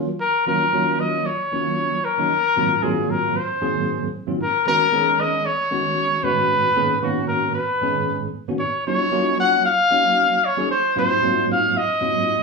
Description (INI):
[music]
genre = jazz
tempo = 114 BPM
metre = 4/4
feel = straight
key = Eb minor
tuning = A4 = 444 Hz
[part]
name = tine electric piano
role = accompaniment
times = 0.0-12.4 s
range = Ab2 to Ab4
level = -23 LUFS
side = right 1 dB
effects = medium stereo tremolo
[part]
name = breathy trumpet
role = melody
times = 0.2-12.4 s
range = Gb4 to Gb5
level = -19 LUFS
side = left 2 dB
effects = none
[sound]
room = wet studio reverb, RT60 0.7 s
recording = band playing live in one room, studio reverb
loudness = -18 LUFS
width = side -3 dB against mid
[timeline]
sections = 0.2-12.4 A section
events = none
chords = 0.2 Ebm9; 2.3 Ab13; 4.4 Db9sus4; 6.2 Abm11; 8.6 Ebm9; 10.7 Ab13